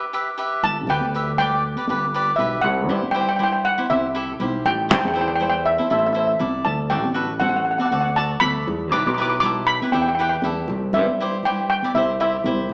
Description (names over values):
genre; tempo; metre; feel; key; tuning
calypso; 119 BPM; 4/4; swing 53% on 16ths; G major; A4 = 440 Hz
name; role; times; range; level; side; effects
steel pan; melody; 0.0-12.7 s; E5 to D6; -20 LUFS; equal; none
cavaquinho; accompaniment; 0.0-12.7 s; E4 to E5; -25 LUFS; equal; none
fingered electric bass; bass; 0.6-12.7 s; G1 to G2; -25 LUFS; equal; none
congas; percussion; 0.6-12.7 s; none; -28 LUFS; equal; none
room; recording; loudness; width
wet large studio reverb, RT60 1.4 s; band playing live in one room, small speaker sound; -18 LUFS; side -35 dB against mid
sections
0.6-12.7 A section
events
break 0.0-0.6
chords
0.0 G; 2.6 C; 4.7 Am; 6.7 D; 8.7 Em; 10.7 C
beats
0.13 | 0.63 1.14 1.64 2.14 | 2.65 3.15 3.65 4.16 | 4.66 5.16 5.67 6.17 | 6.67 7.17 7.68 8.18 | 8.68 9.19 9.69 10.19 | 10.70 11.20 11.70 12.20 | 12.71